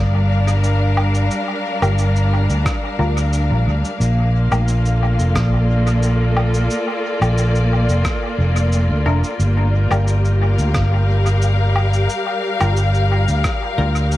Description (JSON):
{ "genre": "ambient dub", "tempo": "89 BPM", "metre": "4/4", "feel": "straight", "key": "G minor", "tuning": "A4 = 439 Hz", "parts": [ { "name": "dark studio string section", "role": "sustained chords", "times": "0.0-14.2 s", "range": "G3 to F5", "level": "-21 LUFS", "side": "left 1 dB", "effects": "none" }, { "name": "fingered electric bass", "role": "bass", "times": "0.0-14.2 s", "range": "F1 to D2", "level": "-16 LUFS", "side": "equal", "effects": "none" }, { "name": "electronic shaker, woodblock and rim click", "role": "drums", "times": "0.5-14.2 s", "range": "none", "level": "-27 LUFS", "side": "equal", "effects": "studio reverb, dub echo" }, { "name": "filtered dub chord stab", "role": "stabs", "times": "1.8-4.7, 9.1-14.0 s", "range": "G3 to Bb4", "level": "-28 LUFS", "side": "left 2 dB", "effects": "phaser, dub echo" }, { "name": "electronic kick drum", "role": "drums", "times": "2.7-13.6 s", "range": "none", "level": "-23 LUFS", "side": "equal", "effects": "overdrive, studio reverb" } ], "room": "digital ambience", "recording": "echo-heavy mix, vinyl crackle", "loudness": "-15 LUFS", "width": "side -15 dB against mid", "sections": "0.0-14.2 A section", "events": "none", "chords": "0.0 Gm7; 4.0 Bbmaj7; 9.4 Gm7" }